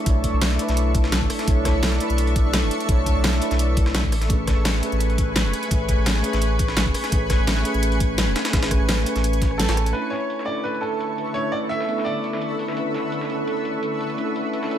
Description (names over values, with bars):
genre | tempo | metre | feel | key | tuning
liquid drum and bass | 170 BPM | 4/4 | straight | unclear | A4 = 440 Hz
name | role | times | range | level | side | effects
tine electric piano | accompaniment | 0.0-14.8 s | A3 to G#5 | -26 LUFS | equal | lush chorus, low-pass filter, ping-pong delay
shimmering ambient pad | sustained chords | 0.0-14.8 s | D3 to C#6 | -28 LUFS | right 1 dB | chorus, built-in reverb, sidechain pumping
warm sub bass | bass | 0.1-9.9 s | E1 to B1 | -22 LUFS | equal | tube saturation
breakbeat sampler-style drum kit | drums | 0.1-14.8 s | hi-hat, snare drum | -30 LUFS | equal | high-pass filter on hats, low-pass filter on hats, studio reverb, high-pass filter on snare, low-pass filter on snare
electronic kick drum | drums | 0.1-9.5 s | none | -22 LUFS | equal | studio reverb
pop drum kit | drums | 0.1-14.6 s | hi-hat, rim click, shaker, snare drum | -26 LUFS | equal | low-pass filter on snare, studio reverb, low-pass filter on hats, low-pass filter on cymbals, low-pass filter on perc
clear baby grand piano | melody | 9.6-12.5 s | A4 to E5 | -27 LUFS | right 1 dB | ping-pong delay
room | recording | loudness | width
light reverb | none | -19 LUFS | side -10 dB against mid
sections
0.0-9.9 A section; 9.9-14.8 B section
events
kick drops out 9.6-9.9; band accent 9.6; filter sweep on tine electric piano 9.9-14.8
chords
0.0 Bm11; 4.1 Amaj9; 9.9 Bm11